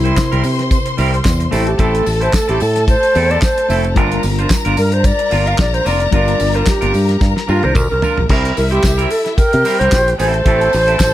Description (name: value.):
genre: disco.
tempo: 111 BPM.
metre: 4/4.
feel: swing 56% on 16ths.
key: unclear.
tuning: A4 = 440 Hz.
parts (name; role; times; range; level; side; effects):
alto flute; melody; 0.0-11.1 s; E4 to F5; -16 LUFS; equal; none.
warm studio string section; second line; 0.0-11.1 s; E4 to C6; -23 LUFS; left 4 dB; none.
clean electric guitar; accompaniment; 0.0-11.0 s; G3 to C5; -22 LUFS; right 4 dB; none.
tine electric piano; accompaniment; 0.0-8.3 s; C3 to E5; -24 LUFS; left 2 dB; overdrive, fast stereo tremolo.
fingered electric bass; bass; 0.0-11.1 s; F1 to C3; -17 LUFS; equal; none.
damped 70s drum kit; drums; 0.1-11.1 s; crash cymbal, handclaps, hi-hat, kick drum, snare drum, toms; -17 LUFS; equal; none.
tambourine; percussion; 0.2-11.1 s; none; -31 LUFS; right 4 dB; none.
room: little or no reverb.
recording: none.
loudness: -12 LUFS.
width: side -13 dB against mid.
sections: 0.0-8.3 A section; 8.3-11.1 B section.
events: alto flute solo 0.0-8.3; drum fill 7.2-8.3.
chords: 0.0 C7; 1.5 Am; 4.0 Gm7; 8.3 C7; 10.2 Am.